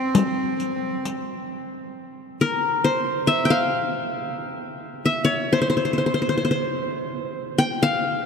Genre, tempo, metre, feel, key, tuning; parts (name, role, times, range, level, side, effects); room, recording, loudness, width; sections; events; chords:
Arabic maqam ensemble; 133 BPM (eighths); 10/8; straight; C maqam hijaz; A4 = 440 Hz
qanun; melody; 0.0-8.3 s; Bb4 to G5; -20 LUFS; left 2 dB
rich cello; second line; 0.0-1.1 s; C4; -29 LUFS; right 1 dB
riq; percussion; 0.1-1.3 s; -25 LUFS; left 3 dB
wet cathedral reverb, RT60 5.8 s; in a vast, echoing space; -21 LUFS; side -6 dB against mid
0.0-1.9 A section; 1.9-8.3 B section